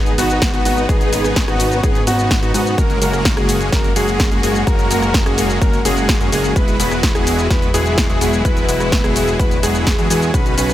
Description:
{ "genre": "EDM, festival progressive house", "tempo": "127 BPM", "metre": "4/4", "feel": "straight", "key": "unclear", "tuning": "A4 = 440 Hz", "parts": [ { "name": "warm symphonic string section", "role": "sustained chords", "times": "0.0-10.7 s", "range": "F#3 to B4", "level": "-25 LUFS", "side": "left 2 dB", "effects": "sidechain pumping" }, { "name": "clear concert grand piano", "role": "arpeggios", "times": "0.0-10.7 s", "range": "F#4 to B4", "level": "-22 LUFS", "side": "left 2 dB", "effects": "sidechain pumping, tape echo" }, { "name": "dense compressed supersaw", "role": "riff", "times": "0.0-10.7 s", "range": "G#3 to B4", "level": "-19 LUFS", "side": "equal", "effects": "sidechain pumping, tape echo" }, { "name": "fat analog bass", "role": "bass", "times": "0.0-10.7 s", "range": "E1 to G#2", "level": "-22 LUFS", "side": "equal", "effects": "sidechain pumping" }, { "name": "big-room dance drum kit", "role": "drums", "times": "0.1-10.7 s", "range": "hi-hat, rim click, shaker, snare drum", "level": "-22 LUFS", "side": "equal", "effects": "none" }, { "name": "electronic kick drum", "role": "drums", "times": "0.4-10.4 s", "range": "none", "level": "-17 LUFS", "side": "equal", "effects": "none" } ], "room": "digital ambience", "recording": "none", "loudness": "-13 LUFS", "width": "side -13 dB against mid", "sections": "0.0-10.7 A section", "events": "none", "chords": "0.0 G#m; 2.8 F#add9; 6.6 Eadd9", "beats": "0.42 | 0.89 1.36 1.84 2.31 | 2.78 3.25 3.73 4.20 | 4.67 5.14 5.62 6.09 | 6.56 7.03 7.50 7.98 | 8.45 8.92 9.39 9.87 | 10.34" }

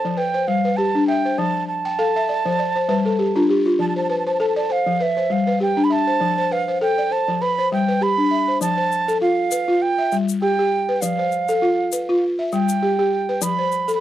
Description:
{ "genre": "west african traditional, West African string and xylophone music", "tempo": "100 BPM", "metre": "4/4", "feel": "swing 56% on 16ths", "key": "F lydian", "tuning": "A4 = 441 Hz", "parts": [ { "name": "wooden flute", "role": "melody", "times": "0.0-14.0 s", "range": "E5 to B5", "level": "-22 LUFS", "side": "right 5 dB", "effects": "cassette tape" }, { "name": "balafon", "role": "arpeggios", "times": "0.0-14.0 s", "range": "F3 to G5", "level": "-19 LUFS", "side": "left 2 dB", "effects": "none" }, { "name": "egg shaker", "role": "percussion", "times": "8.6-13.9 s", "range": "none", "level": "-28 LUFS", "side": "left 9 dB", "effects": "none" } ], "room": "moderate studio reverb, RT60 0.5 s", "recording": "home recording on cassette", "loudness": "-17 LUFS", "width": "side -12 dB against mid", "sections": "0.0-8.6 A section; 8.6-14.0 B section", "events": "balafon fill 1.8-3.8", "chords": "0.2 G; 1.4 F; 2.6 G5; 3.8 F; 5.0 G; 6.2 F; 7.4 G; 8.6 F; 9.8 G; 11.0 F; 12.2 G; 13.4 F", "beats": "0.17 0.78 | 1.38 1.98 2.58 3.19 | 3.79 4.39 5.00 5.60 | 6.20 6.81 7.41 8.01 | 8.61 9.21 9.82 10.42 | 11.02 11.62 12.22 12.81 | 13.41" }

